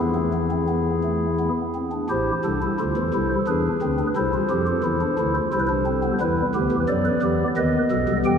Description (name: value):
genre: classical, baroque-style 4-part fugue for pipe organ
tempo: 88 BPM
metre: 3/4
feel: straight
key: A minor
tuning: A4 = 440 Hz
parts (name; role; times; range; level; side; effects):
- pipe organ, stopped flute; solo; 0.0-8.4 s; A1 to G5; -20 LUFS; equal; none
room: wet cathedral reverb, RT60 5.3 s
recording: minimal, uncompressed stereo recording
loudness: -20 LUFS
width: side -7 dB against mid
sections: 0.0-2.1 A section; 2.1-8.4 B section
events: none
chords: 0.0 E; 2.1 Am; 3.5 E7; 4.2 Am/C; 6.2 Em; 7.6 B7/D#